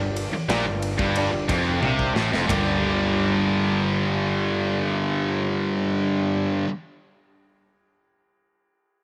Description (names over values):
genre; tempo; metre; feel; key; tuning
classic rock; 90 BPM; 4/4; straight; G minor; A4 = 440 Hz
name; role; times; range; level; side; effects
warm baby grand piano; accompaniment; 0.0-6.6 s; D4 to F5; -34 LUFS; equal; none
cranked stack guitar; riff; 0.0-6.7 s; F2 to G4; -30 LUFS; equal; overdrive
thick fuzz guitar; riff; 0.0-6.7 s; F2 to G3; -30 LUFS; equal; distortion
tight distorted guitar; riff; 0.0-6.7 s; F2 to G3; -28 LUFS; equal; distortion
fuzz picked electric bass; bass; 0.0-6.6 s; F1 to C2; -31 LUFS; equal; overdrive
big rock drum kit; drums; 0.2-2.7 s; kick drum, ride cymbal, snare drum, toms; -32 LUFS; equal; none
room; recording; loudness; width
studio reverb; none; -23 LUFS; mono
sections
0.0-2.5 A section; 2.5-5.2 B section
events
drum fill 1.8-2.5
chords
0.0 Gm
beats
0.49 1.16 1.82 | 2.49 3.16 3.83 4.49